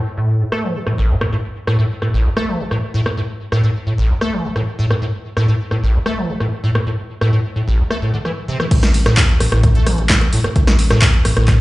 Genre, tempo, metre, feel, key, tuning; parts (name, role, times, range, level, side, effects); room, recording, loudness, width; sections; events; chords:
acid house; 130 BPM; 4/4; straight; A4 = 441 Hz
acid bass, square; riff; 0.2-11.5 s; A1 to A3; -17 LUFS; equal; ensemble chorus, cassette tape, sidechain pumping, tape echo
punchy analog drum machine; drums; 0.5-11.6 s; crash cymbal, handclaps, hi-hat, rim click, snare drum; -20 LUFS; equal; overdrive, low-pass filter on snare, low-pass filter on hats, low-pass filter on cymbals, low-pass filter on room
saturated sub bass; bass; 8.7-11.6 s; A1 to A2; -18 LUFS; equal; sidechain pumping
electronic kick drum; drums; 8.7-11.6 s; -14 LUFS; equal; overdrive
wet studio reverb, RT60 0.6 s; played on a big sound system in a bare room, large studio reverb, nothing above 11.0 kHz; -14 LUFS; side -19 dB against mid
0.0-8.7 A section; 8.7-11.6 B section
drop 8.7-11.6
0.0 A5